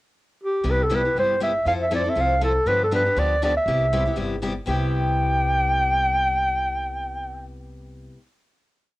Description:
acoustic string swing (jazz manouche); 239 BPM; 4/4; swing 55% on 8ths; C major; A4 = 440 Hz
breathy clarinet; melody; 0.4-7.5 s; G4 to G5; -21 LUFS; equal; cassette tape
picked steel-string acoustic guitar; accompaniment; 0.6-8.2 s; C3 to A4; -28 LUFS; left 3 dB; cassette tape
upright bass; bass; 0.6-8.1 s; G1 to G2; -26 LUFS; equal
light reverb, studio ambience; home recording on cassette; -20 LUFS; side -18 dB against mid
0.0-0.7 pickup bar; 0.7-4.7 A section; 4.7-6.7 final chord
0.0 N.C.; 0.7 Cmaj7; 1.7 Fmaj7; 2.7 G7; 3.7 Cmaj7

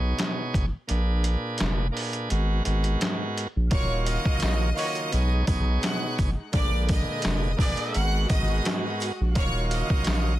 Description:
hip hop, boom-bap hip-hop; 85 BPM; 4/4; swing 55% on 16ths; Eb minor; A4 = 442 Hz
bright tonewheel organ; accompaniment; 0.0-10.4 s; Ab2 to Db5; -30 LUFS; right 2 dB; overdrive, stopped rotary speaker, cassette tape
saturated sub bass; bass; 0.0-10.4 s; Eb1 to B1; -25 LUFS; equal
trip hop sampler-style drum kit; drums; 0.2-10.3 s; handclaps, hi-hat, kick drum, snare drum; -27 LUFS; equal; overdrive
bright studio violin section; melody; 3.7-10.4 s; Db5 to F#6; -32 LUFS; left 1 dB; ping-pong delay
warm symphonic string section; sustained chords; 3.7-10.4 s; Db3 to F5; -38 LUFS; right 1 dB
sleigh bells; percussion; 3.7-10.2 s; -45 LUFS; right 5 dB
clear trumpet section; stabs; 4.8-8.1 s; Bb3 to D5; -35 LUFS; right 1 dB; ping-pong delay
little or no reverb; dense, heavily limited modern master, vinyl crackle; -23 LUFS; side -14 dB against mid
0.0-3.7 A section; 3.7-10.4 B section
kick muted 0.9-3.7
0.0 B6; 0.9 Bb7b9; 2.3 Abm7; 3.7 Ebm9; 5.1 B6; 6.5 Bb7b9; 7.9 Abm7; 9.4 Ebm9

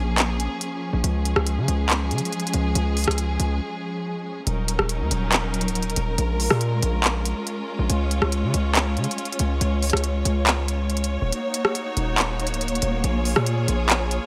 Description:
hip hop, trap; 140 BPM; 4/4; half-time; Eb minor; A4 = 441 Hz
rich symphonic string section; sustained chords; 0.0-14.3 s; F3 to Db5; -30 LUFS; equal
hard-hitting 808-style bass; bass; 0.0-14.2 s; Db1 to Db3; -26 LUFS; equal
trap drum kit; drums; 0.2-14.2 s; handclaps, hi-hat, rim click; -25 LUFS; equal
digital ambience; -23 LUFS; mono
0.0-4.5 A section; 4.5-14.3 B section
break 3.6-4.5; kick muted 11.3-11.8
0.0 Bbm7; 1.0 Db; 4.5 Ebm7; 6.2 Bbm7; 7.9 Db; 11.3 Ebm7; 13.0 Bbm7

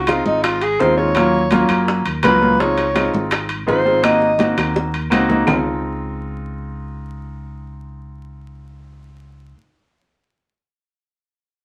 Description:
Afro-Cuban jazz; 166 BPM; 4/4; straight; Db major; A4 = 440 Hz
breathy alto saxophone; melody; 0.0-4.6 s; Eb4 to Eb5; -20 LUFS; equal
fingered electric bass; bass; 0.0-9.5 s; Ab1 to Gb2; -29 LUFS; equal
clear baby grand piano; accompaniment; 0.1-9.5 s; Gb3 to Gb4; -21 LUFS; equal
bongos; percussion; 0.1-5.6 s; -27 LUFS; equal
claves; percussion; 0.1-5.6 s; -30 LUFS; equal
congas; percussion; 0.1-5.6 s; -27 LUFS; equal
timbales; percussion; 0.1-5.6 s; -28 LUFS; equal
moderate studio ambience, RT60 0.5 s; vinyl crackle; -17 LUFS; mono
0.0-5.5 A section; 5.5-8.4 B section
alto saxophone solo 0.0-5.5; drum fill 4.6-5.5
0.0 Dbmaj7; 1.2 Ebm7; 2.6 Dbmaj7; 4.0 Ab7; 5.5 Dbmaj7

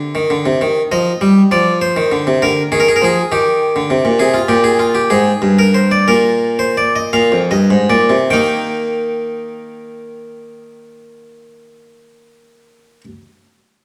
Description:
classical, baroque-style two-part invention for harpsichord; 47-68 BPM (dotted quarters); 6/8; straight; Eb major; A4 = 440 Hz
harpsichord; solo; 0.0-13.0 s; F2 to G5; -14 LUFS; equal
wet stone room reverb, RT60 1.3 s; -14 LUFS; mono
0.6-8.3 A section; 8.3-13.3 B section
slowing down 3.3-8.3
0.0 Bb; 0.6 Eb; 1.5 Csus24; 2.4 Bb7/D; 3.3 Eb; 4.2 Ab; 5.1 Bb13; 6.1 Eb5/Bb; 7.1 Bb7; 8.3 Eb

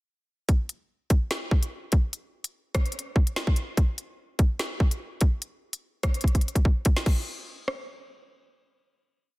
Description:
hip hop; 146 BPM; 4/4; half-time
drill drum kit; drums; 0.5-7.8 s; crash cymbal, hi-hat, kick drum, rim click, snare drum; -23 LUFS; equal; soft clipping on snare
little or no reverb; dense, heavily limited modern master; -24 LUFS; side -22 dB against mid
0.5-7.1 hook; 7.1-9.4 final hit
drum fill 6.2-7.1

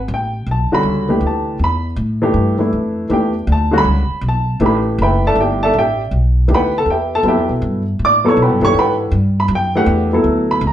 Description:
modal jazz; 160 BPM; 4/4; swing 67% on 8ths; A mixolydian; A4 = 440 Hz
upright bass; bass; 0.0-10.7 s; F#1 to B2; -18 LUFS; equal
dark baby grand piano; accompaniment; 0.1-10.7 s; D3 to D6; -15 LUFS; equal
wet studio reverb, RT60 0.7 s; band playing live in one room, nothing above 10.6 kHz; -13 LUFS; side -11 dB against mid
0.1-10.7 A section
0.1 A9sus4; 6.1 Emadd9

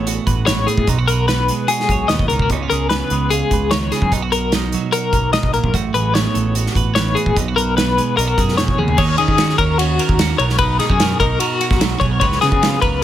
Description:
math rock and midwest emo; 148 BPM; 4/4; straight; B lydian; A4 = 440 Hz
twelve-string electric guitar; accompaniment; 0.0-13.0 s; G#2 to C#5; -21 LUFS; right 6 dB
twelve-string electric guitar; arpeggios; 0.0-13.0 s; F#4 to D#5; -18 LUFS; left 6 dB; tremolo
growling picked electric bass; bass; 0.0-13.0 s; A1 to D#3; -21 LUFS; equal; overdrive
loose indie drum kit; drums; 0.1-12.9 s; crash cymbal, hi-hat, kick drum, ride cymbal, snare drum, toms; -20 LUFS; right 1 dB
light reverb; -14 LUFS; side -11 dB against mid
0.0-9.0 A section; 9.0-13.0 B section
drum fill 8.8
0.0 A69; 0.9 G#m7/B; 2.5 C#7; 4.1 Bmaj7; 5.7 A69; 7.4 G#m7/B; 8.2 Bmaj9; 9.0 D#m7; 10.4 Bmaj7; 12.2 C#7

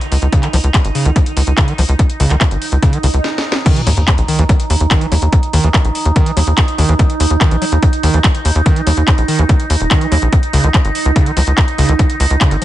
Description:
psychedelic trance; 144 BPM; 4/4; straight; A4 = 439 Hz
overtone-sweeping drone; sustained chords; 0.0-12.6 s; Eb4; -21 LUFS; right 4 dB; chorus, built-in reverb, sidechain pumping
techno drum kit; drums; 0.0-12.6 s; crash cymbal, handclaps, hi-hat, snare drum; -20 LUFS; left 1 dB
tight sequencer bass; bass; 0.1-12.6 s; Eb1 to Eb2; -13 LUFS; equal
overdriven acid bass; riff; 0.3-12.6 s; Db3 to Gb3; -20 LUFS; equal; auto-pan, sidechain pumping, ping-pong delay
electronic kick drum; drums; 0.3-12.5 s; -12 LUFS; equal
swell and sub drop; sound effects; 3.0-5.3 s; -23 LUFS; equal
little or no reverb; nothing above 10.6 kHz; -11 LUFS; side -14 dB against mid
0.0-3.7 A section; 3.7-12.6 B section
swell 3.0-3.7; drum fill 3.2-3.7; stop 3.2-3.7; drop 3.7-12.6; impact 3.7-5.3
0.0 Db5; 3.7 Eb5; 10.3 Db5

